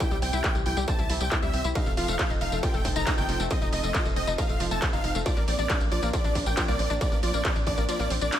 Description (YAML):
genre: uplifting trance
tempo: 137 BPM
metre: 4/4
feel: straight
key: unclear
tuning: A4 = 438 Hz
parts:
  - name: dense compressed supersaw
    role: melody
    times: 0.0-8.4 s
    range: D5 to Bb5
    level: -32 LUFS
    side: right 1 dB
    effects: sidechain pumping, ping-pong delay
  - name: lush unison pad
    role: sustained chords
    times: 0.0-8.4 s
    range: C3 to A4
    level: -36 LUFS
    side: equal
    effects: chorus, sidechain pumping
  - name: analog pluck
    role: arpeggios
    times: 0.0-8.4 s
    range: E3 to E4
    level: -32 LUFS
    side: left 3 dB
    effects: chorus, sidechain pumping, tape echo
  - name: electronic kick drum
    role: drums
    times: 0.0-7.8 s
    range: none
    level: -27 LUFS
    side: equal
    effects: distortion
  - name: techno drum kit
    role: drums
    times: 0.0-8.4 s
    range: handclaps, hi-hat, ride cymbal, tambourine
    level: -32 LUFS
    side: equal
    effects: sidechain pumping on hats, sidechain pumping on perc, sidechain pumping on cymbals
  - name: tight sequencer bass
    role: bass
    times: 0.1-8.3 s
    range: F1 to D2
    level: -30 LUFS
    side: equal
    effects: sidechain pumping
room: light reverb, digital ambience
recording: none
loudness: -24 LUFS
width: side -11 dB against mid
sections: 0.0-8.4 A section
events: kick drops out 7.9-8.4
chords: 0.0 C; 1.8 F7; 5.3 Bbadd9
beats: | 0.00 0.44 0.88 1.32 | 1.76 2.19 2.63 3.07 | 3.51 3.94 4.38 4.82 | 5.26 5.70 6.13 6.57 | 7.01 7.45 7.89 8.32